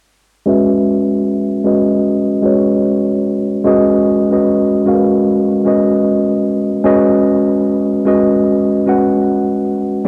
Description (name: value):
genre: hip hop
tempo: 75 BPM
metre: 4/4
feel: swing 63% on 16ths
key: unclear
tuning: A4 = 441 Hz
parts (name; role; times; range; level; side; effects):
- mellow tine electric piano; accompaniment; 0.5-10.1 s; G3 to F#5; -14 LUFS; equal; low-pass filter, cassette tape
room: light reverb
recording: home recording on cassette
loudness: -14 LUFS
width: mono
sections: 0.5-10.1 A section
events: filter sweep on tine electric piano 0.5-10.1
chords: 0.5 F#sus2; 3.7 G#m9; 6.9 C#sus2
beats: | 0.46 1.26 2.06 2.86 | 3.66 4.46 5.26 6.06 | 6.86 7.66 8.46 9.26 | 10.06